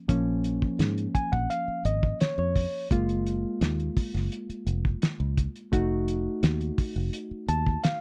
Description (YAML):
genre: straight-eighth soul blues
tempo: 85 BPM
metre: 4/4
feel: straight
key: Bb minor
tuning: A4 = 440 Hz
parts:
  - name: bright reed electric piano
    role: accompaniment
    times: 0.0-8.0 s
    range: F3 to A5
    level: -32 LUFS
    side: equal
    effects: none
  - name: fingered electric bass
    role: bass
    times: 0.1-7.8 s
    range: F1 to Ab2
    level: -31 LUFS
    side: equal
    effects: none
  - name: cloth-damped thuddy drum kit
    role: drums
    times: 0.1-8.0 s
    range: hi-hat, kick drum, snare drum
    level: -29 LUFS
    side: equal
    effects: none
room: little or no reverb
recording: dry, close 1970s-style studio recording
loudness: -28 LUFS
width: mono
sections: 0.0-8.0 A section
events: reed electric piano fill 0.8-2.9, 7.1-8.0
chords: 0.0 Bbm; 2.9 Gbmaj7; 5.7 F7b9